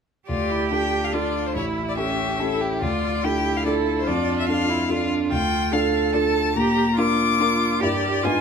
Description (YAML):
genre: quick classical-period movement for piano quartet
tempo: 143 BPM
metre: 3/4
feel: straight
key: D minor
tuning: A4 = 440 Hz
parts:
  - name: rich violin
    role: melody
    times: 0.3-8.4 s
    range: C5 to D6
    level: -25 LUFS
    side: left 7 dB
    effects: none
  - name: clear cello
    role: second line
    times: 0.3-8.4 s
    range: C#4 to A4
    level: -26 LUFS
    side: right 8 dB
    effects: none
  - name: rich violin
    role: second line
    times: 0.3-8.4 s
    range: B3 to A4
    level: -30 LUFS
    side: left 3 dB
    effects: none
  - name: warm concert grand piano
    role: accompaniment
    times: 0.3-8.4 s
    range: A1 to B4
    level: -24 LUFS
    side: equal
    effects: none
room: wet large studio reverb, RT60 1.5 s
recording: minimal, uncompressed stereo recording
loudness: -20 LUFS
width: side -6 dB against mid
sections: 0.3-8.4 A section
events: none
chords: 0.3 Dm; 1.6 A7; 2.8 Dm; 4.1 Dm/F; 5.3 Dm; 6.6 Bb; 7.8 Em7b5/G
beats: | 0.29 0.71 1.13 | 1.55 1.97 2.39 | 2.82 3.24 3.65 | 4.07 4.48 4.90 | 5.31 5.73 6.14 | 6.56 6.98 7.40 | 7.82 8.24